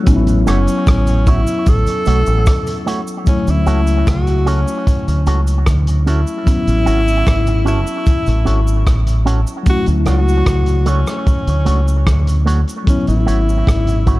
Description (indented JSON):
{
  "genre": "lovers rock reggae",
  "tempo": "75 BPM",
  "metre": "4/4",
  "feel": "straight",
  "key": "unclear",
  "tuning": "A4 = 440 Hz",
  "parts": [
    { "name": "tine electric piano", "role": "accompaniment", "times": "0.0-14.2 s", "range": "F#3 to E4", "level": "-21 LUFS", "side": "left 2 dB", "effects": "dub echo" },
    { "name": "deep dub fingered electric bass", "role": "bass", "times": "0.1-14.2 s", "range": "F#1 to D2", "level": "-14 LUFS", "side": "equal", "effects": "none" },
    { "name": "crunchy breakbeat drum kit", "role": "drums", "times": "0.1-14.2 s", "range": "hi-hat, kick drum, rim click", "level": "-16 LUFS", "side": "equal", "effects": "none" },
    { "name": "cabasa", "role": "percussion", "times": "0.1-14.2 s", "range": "none", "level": "-40 LUFS", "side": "right 5 dB", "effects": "dub echo" },
    { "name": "clear tenor saxophone", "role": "melody", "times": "0.5-14.2 s", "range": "C#4 to A4", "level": "-22 LUFS", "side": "left 1 dB", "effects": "tape echo" },
    { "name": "electric guitar with an envelope filter", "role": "stabs", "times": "0.5-14.2 s", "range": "A3 to C#5", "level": "-25 LUFS", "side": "right 3 dB", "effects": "phaser, dub echo" }
  ],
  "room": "small room reverb",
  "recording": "dark, warm production",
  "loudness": "-12 LUFS",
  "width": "side -18 dB against mid",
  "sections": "0.0-3.3 A section; 3.3-14.2 B section",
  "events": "none",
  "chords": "0.1 A6; 3.3 Dmaj7; 6.5 A6; 9.7 Dmaj7; 12.9 A6"
}